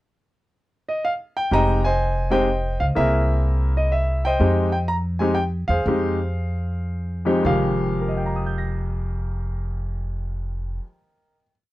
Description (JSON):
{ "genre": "jazz piano trio", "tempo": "107-126 BPM", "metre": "3/4", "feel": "swing 66% on 8ths", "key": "F minor", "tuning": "A4 = 440 Hz", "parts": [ { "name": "clear concert grand piano", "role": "melody", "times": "0.9-11.7 s", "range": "F2 to Bb6", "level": "-22 LUFS", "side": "equal", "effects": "none" }, { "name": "upright bass", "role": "bass", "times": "1.5-10.8 s", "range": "F1 to F2", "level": "-23 LUFS", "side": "equal", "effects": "none" } ], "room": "light reverb", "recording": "dry, close 1970s-style studio recording", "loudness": "-20 LUFS", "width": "side -16 dB against mid", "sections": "0.1-1.5 pickup bar; 1.5-7.4 A section; 7.4-10.8 final chord", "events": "slowing down 4.4-7.4", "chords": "0.1 N.C.; 1.5 Fm9; 3.0 C7alt; 4.4 Fm9" }